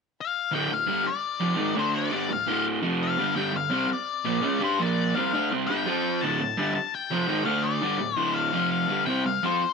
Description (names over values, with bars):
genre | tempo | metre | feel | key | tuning
rock | 169 BPM | 4/4 | straight | D minor | A4 = 440 Hz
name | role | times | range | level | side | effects
octave-fuzz lead guitar | melody | 0.2-9.7 s | C5 to A5 | -27 LUFS | left 9 dB | distortion
crunchy overdriven guitar | riff | 0.5-9.6 s | D2 to G4 | -25 LUFS | right 2 dB | none
room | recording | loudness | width
light reverb, digital ambience | none | -23 LUFS | side -5 dB against mid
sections
0.5-9.7 A section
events
none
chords
0.0 N.C.; 0.5 Dm; 2.8 F5; 3.2 Dm; 3.4 G5; 4.8 Bb5; 5.2 G5; 5.9 F5; 6.2 Dm; 8.5 F5; 8.9 Dm; 9.1 C5